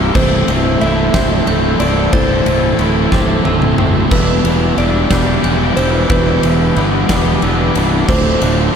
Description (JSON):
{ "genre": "post-rock", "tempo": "60 BPM (dotted quarters)", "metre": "6/8", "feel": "straight", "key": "unclear", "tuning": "A4 = 438 Hz", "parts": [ { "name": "rich studio string section", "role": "sustained chords", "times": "0.0-8.8 s", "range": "F4 to D6", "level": "-28 LUFS", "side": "left 2 dB", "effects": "none" }, { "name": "glockenspiel with brass mallets", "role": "arpeggios", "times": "0.0-8.8 s", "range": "D6 to A6", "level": "-27 LUFS", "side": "right 3 dB", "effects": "analog delay" }, { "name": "twangy electric guitar", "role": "arpeggios", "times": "0.0-8.8 s", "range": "C2 to E4", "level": "-23 LUFS", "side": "left 2 dB", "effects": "none" }, { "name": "crunchy overdriven guitar", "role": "riff", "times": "0.0-8.8 s", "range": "C2 to A4", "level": "-19 LUFS", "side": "left 9 dB", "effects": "analog chorus" }, { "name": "sludgy distorted guitar", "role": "riff", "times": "0.0-8.8 s", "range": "C2 to A4", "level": "-19 LUFS", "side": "right 9 dB", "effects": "overdrive" }, { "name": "fuzz fingered electric bass", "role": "bass", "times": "0.0-8.7 s", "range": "C1 to G1", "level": "-16 LUFS", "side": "equal", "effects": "overdrive" }, { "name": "electric slide guitar", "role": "melody", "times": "0.2-8.8 s", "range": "B4 to E5", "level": "-21 LUFS", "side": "right 1 dB", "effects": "analog delay" }, { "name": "huge arena drum kit", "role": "drums", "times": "0.2-8.6 s", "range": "crash cymbal, kick drum, ride cymbal, snare drum, splash cymbal, toms", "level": "-18 LUFS", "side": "equal", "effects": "none" } ], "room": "moderate lush hall reverb, RT60 3.0 s", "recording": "dreamy mix soaked in reverb", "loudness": "-11 LUFS", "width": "side -7 dB against mid", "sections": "0.0-8.8 A section", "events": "drum fill 3.1-4.1", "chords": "0.2 Am/C; 4.1 Em7; 8.1 Dm7" }